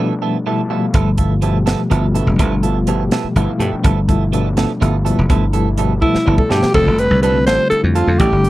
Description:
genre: electric jazz fusion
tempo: 83 BPM (dotted quarters)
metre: 6/8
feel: straight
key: G mixolydian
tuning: A4 = 438 Hz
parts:
  - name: overdriven reed electric piano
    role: accompaniment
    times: 0.0-8.5 s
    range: B2 to A5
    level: -18 LUFS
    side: left 2 dB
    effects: harmonic tremolo
  - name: clean electric guitar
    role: stabs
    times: 0.0-8.3 s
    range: E3 to A4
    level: -23 LUFS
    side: right 12 dB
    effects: lush chorus
  - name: dry thumbed slap bass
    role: bass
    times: 0.9-8.5 s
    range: F1 to G2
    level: -16 LUFS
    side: equal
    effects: none
  - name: crisp fusion drum kit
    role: drums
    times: 0.9-8.5 s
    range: crash cymbal, hi-hat, kick drum, snare drum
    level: -19 LUFS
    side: equal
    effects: none
  - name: breathy alto saxophone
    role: melody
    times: 6.0-8.5 s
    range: E4 to C5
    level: -15 LUFS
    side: equal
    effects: slapback echo
room: little or no reverb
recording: dry, close 1970s-style studio recording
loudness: -13 LUFS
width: side -16 dB against mid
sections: 0.0-6.7 A section; 6.7-8.5 B section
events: reed electric piano fill 0.2-0.9, 3.1-3.8, 6.0-6.7; drum fill 6.0-6.7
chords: 0.0 G13; 6.7 F69

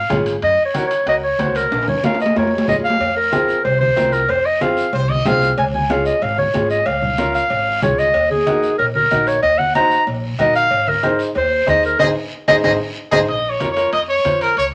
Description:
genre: latin, cumbia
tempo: 187 BPM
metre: 4/4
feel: straight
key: Bb minor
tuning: A4 = 440 Hz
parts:
  - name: clear clarinet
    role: melody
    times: 0.0-13.2 s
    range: Ab4 to Bb5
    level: -18 LUFS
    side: equal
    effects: none
  - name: upright bass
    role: bass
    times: 0.0-14.7 s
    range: Ab1 to Gb2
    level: -28 LUFS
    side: equal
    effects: none
  - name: bright upright piano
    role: accompaniment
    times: 0.1-14.5 s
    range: C4 to C5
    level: -24 LUFS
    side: equal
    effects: none
  - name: congas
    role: percussion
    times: 0.1-14.7 s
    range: none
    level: -29 LUFS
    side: equal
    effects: none
  - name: guiro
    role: percussion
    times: 0.1-14.7 s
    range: none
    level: -39 LUFS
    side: equal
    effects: none
  - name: timbales and cowbell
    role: percussion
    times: 0.1-14.7 s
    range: none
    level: -28 LUFS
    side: equal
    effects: none
  - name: brilliant trumpet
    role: second line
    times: 4.9-5.5, 12.0-14.7 s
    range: Ab4 to F5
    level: -21 LUFS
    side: equal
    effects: none
room: moderate studio reverb, RT60 0.8 s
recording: none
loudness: -17 LUFS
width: mono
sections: 0.0-3.0 A section; 3.0-13.3 B section; 13.3-14.7 C section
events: drum fill 1.7-3.0, 12.5-13.3; band accent 12.0-13.3; trumpet solo 13.3-14.7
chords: 0.4 Gb; 1.7 Bbm; 3.0 Fm; 5.6 Db; 8.1 Ebm; 10.7 Ab; 13.3 Bbm

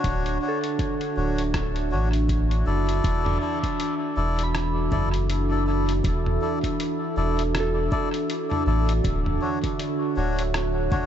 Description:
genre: ambient dub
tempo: 80 BPM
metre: 4/4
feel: swing 58% on 16ths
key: unclear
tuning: A4 = 438 Hz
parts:
  - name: warbly tape-like pad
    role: sustained chords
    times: 0.0-11.1 s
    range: D3 to E5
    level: -27 LUFS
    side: right 2 dB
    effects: chorus, built-in reverb
  - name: soft synth bell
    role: arpeggios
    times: 0.0-11.1 s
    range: A4 to B5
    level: -36 LUFS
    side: right 3 dB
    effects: chorus, dub echo
  - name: melodica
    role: stabs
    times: 0.0-11.1 s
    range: D4 to D5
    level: -30 LUFS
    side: left 4 dB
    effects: dub echo
  - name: soft dub sub bass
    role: bass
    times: 0.0-10.9 s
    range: D1 to A1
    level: -24 LUFS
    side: equal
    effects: tube saturation
  - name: electronic kick drum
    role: drums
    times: 0.0-11.1 s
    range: none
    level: -28 LUFS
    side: equal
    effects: overdrive, studio reverb
  - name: lo-fi sampler-style drum kit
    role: drums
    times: 0.0-11.1 s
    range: hi-hat, rim click, toms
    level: -32 LUFS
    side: equal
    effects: studio reverb, dub echo
room: light reverb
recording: nothing above 7.9 kHz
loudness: -22 LUFS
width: side -9 dB against mid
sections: 0.0-3.0 A section; 3.0-11.1 B section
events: none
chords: 0.0 Dmaj7; 3.0 E7sus4; 9.0 Dmaj7

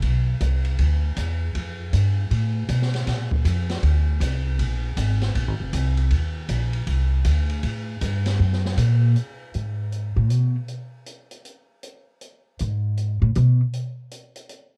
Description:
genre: jazz piano trio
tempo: 158 BPM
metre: 4/4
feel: swing 64% on 8ths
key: unclear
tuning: A4 = 443 Hz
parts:
  - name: upright bass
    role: bass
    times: 0.0-13.6 s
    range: F1 to B2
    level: -23 LUFS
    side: equal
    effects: none
  - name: open jazz drum kit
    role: drums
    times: 0.0-14.6 s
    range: hi-hat, kick drum, ride cymbal, snare drum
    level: -34 LUFS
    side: equal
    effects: none
room: little or no reverb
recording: home recording on cassette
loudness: -23 LUFS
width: mono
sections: 0.0-9.2 A section; 9.2-14.8 B section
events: upright bass solo 9.2-14.8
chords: none

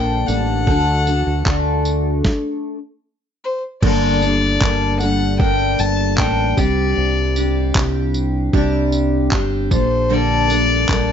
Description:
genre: acoustic pop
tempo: 76 BPM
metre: 4/4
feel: straight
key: G harmonic minor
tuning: A4 = 437 Hz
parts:
  - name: rich violin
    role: melody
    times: 0.0-11.1 s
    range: C5 to A5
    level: -22 LUFS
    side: left 4 dB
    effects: none
  - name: picked steel-string acoustic guitar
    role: accompaniment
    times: 0.0-11.1 s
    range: G2 to A4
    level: -19 LUFS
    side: left 1 dB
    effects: double-tracked left and right
  - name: fingered electric bass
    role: bass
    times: 0.0-11.1 s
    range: G1 to D2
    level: -20 LUFS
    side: right 1 dB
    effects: none
  - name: dusty soul sampler-style drum kit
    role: drums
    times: 0.3-11.1 s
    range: crash cymbal, handclaps, kick drum, snare drum, tambourine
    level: -19 LUFS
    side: right 1 dB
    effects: none
room: light reverb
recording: nothing above 7.6 kHz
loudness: -15 LUFS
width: side -8 dB against mid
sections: 0.0-3.8 A section; 3.8-11.1 B section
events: stop 2.3-3.8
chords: 0.0 Gmadd9/Bb; 0.7 D; 3.8 Gmadd9; 6.6 Csus2; 9.7 Gmadd9/Bb

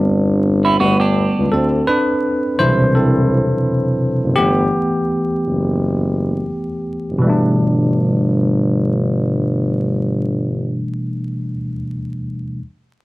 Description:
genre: hip hop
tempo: 84 BPM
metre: 4/4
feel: swing 59% on 16ths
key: G major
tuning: A4 = 444 Hz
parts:
  - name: bell-like tine electric piano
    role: accompaniment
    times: 0.0-12.6 s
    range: B2 to C5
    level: -16 LUFS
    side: equal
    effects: medium stereo tremolo, cassette tape, low-pass filter
  - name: mellow tuba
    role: bass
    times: 0.0-10.9 s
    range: F#1 to D2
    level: -20 LUFS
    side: equal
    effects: none
  - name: semi-hollow electric guitar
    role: second line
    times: 0.6-1.5 s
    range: B3 to G4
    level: -18 LUFS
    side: right 3 dB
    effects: analog delay
room: moderate studio reverb, RT60 0.5 s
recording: vinyl crackle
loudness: -15 LUFS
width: side -19 dB against mid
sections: 0.0-1.5 A section; 1.5-7.2 B section; 7.2-10.1 C section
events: tine electric piano solo 0.0-1.5, 1.5-7.2; filter sweep on tine electric piano 1.5-7.2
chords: 0.0 Am11 (rootless); 0.8 G; 1.5 D13; 4.4 G69

